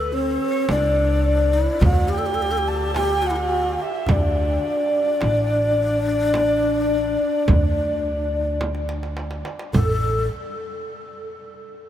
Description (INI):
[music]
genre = Arabic maqam ensemble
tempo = 106 BPM (eighths)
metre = 10/8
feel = straight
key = D maqam rast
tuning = A4 = 441 Hz
[part]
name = breathy alto ocarina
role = melody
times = 0.0-10.3 s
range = A4 to A5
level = -23 LUFS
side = equal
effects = slapback echo
[part]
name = breathy low ney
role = second line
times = 0.0-10.3 s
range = C#4-48c to A4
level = -26 LUFS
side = left 2 dB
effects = none
[part]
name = upright bass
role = bass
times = 0.0-10.3 s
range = A1 to D2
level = -23 LUFS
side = equal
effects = none
[part]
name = darbuka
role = percussion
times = 0.1-10.3 s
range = none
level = -27 LUFS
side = right 1 dB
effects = none
[part]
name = frame drum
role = percussion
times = 0.7-10.3 s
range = none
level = -25 LUFS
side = right 2 dB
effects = none
[sound]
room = wet huge ambient reverb, RT60 7.5 s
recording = in a vast, echoing space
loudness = -18 LUFS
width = side -11 dB against mid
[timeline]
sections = 0.0-9.7 A section; 9.7-11.9 B section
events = drum fill 8.6-9.7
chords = none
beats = 0.12 0.69 1.25 1.82 2.39 2.95 3.52 | 4.08 4.65 5.22 5.78 6.35 6.91 7.48 8.04 8.61 9.18 | 9.74